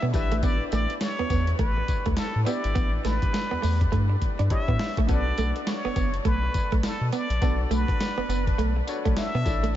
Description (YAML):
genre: R&B, new jack swing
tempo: 103 BPM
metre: 4/4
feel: swing 61% on 16ths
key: B minor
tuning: A4 = 441 Hz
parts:
  - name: trumpet with plunger mute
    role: melody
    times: 0.0-9.8 s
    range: A4 to E5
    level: -31 LUFS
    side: equal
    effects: analog delay
  - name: clear concert grand piano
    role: accompaniment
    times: 0.0-9.8 s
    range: C#4 to D5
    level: -35 LUFS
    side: left 4 dB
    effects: none
  - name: direct-recorded clean electric guitar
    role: riff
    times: 0.0-9.7 s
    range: A3 to D4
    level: -31 LUFS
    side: right 6 dB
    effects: lush chorus
  - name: round analog bass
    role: bass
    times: 0.0-9.8 s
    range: F#1 to B2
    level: -26 LUFS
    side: equal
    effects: none
  - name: dusty soul sampler-style drum kit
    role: drums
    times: 0.1-9.7 s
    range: hi-hat, kick drum, snare drum, tambourine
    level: -28 LUFS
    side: equal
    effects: overdrive
room: light reverb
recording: nothing above 7.7 kHz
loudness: -22 LUFS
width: side -12 dB against mid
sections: 0.0-9.8 A section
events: drum fill 3.9-5.1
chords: 0.1 A7sus4; 5.1 Bm7